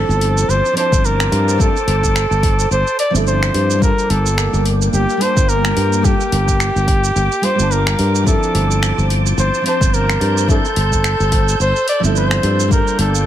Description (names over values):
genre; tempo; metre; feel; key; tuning
sunset chillout; 108 BPM; 4/4; swing 57% on 16ths; G dorian; A4 = 439 Hz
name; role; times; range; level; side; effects
warm flugelhorn; melody; 0.0-13.3 s; G4 to D5; -18 LUFS; equal; vintage 12-bit sampler grit, ping-pong delay
nylon-string guitar; accompaniment; 0.0-13.3 s; F3 to A5; -22 LUFS; moving between left 6 dB and right 4 dB; auto-pan, digital delay
soft string machine; sustained chords; 0.0-13.3 s; Bb3 to E6; -25 LUFS; equal; phaser, ensemble chorus
sustaining fretless electric bass; bass; 0.0-13.3 s; G1 to G2; -17 LUFS; equal; none
deep house drum kit; drums; 0.1-13.2 s; finger snaps, hi-hat, shaker; -23 LUFS; right 2 dB; none
electronic kick drum; drums; 0.9-12.8 s; none; -17 LUFS; equal; none
wind-like tuned noise texture; texture; 9.1-13.3 s; G6; -28 LUFS; right 4 dB; built-in reverb
room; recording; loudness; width
light reverb, digital ambience; none; -13 LUFS; side -11 dB against mid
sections
0.0-13.3 A section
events
none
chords
0.0 Dm7/G; 3.8 Gm7; 8.3 Dm7/G; 12.7 Gm7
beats
0.49 1.04 | 1.60 2.16 2.71 3.27 | 3.82 4.38 4.93 5.49 | 6.04 6.60 7.16 7.71 | 8.27 8.82 9.38 9.93 | 10.49 11.04 11.60 12.16 | 12.71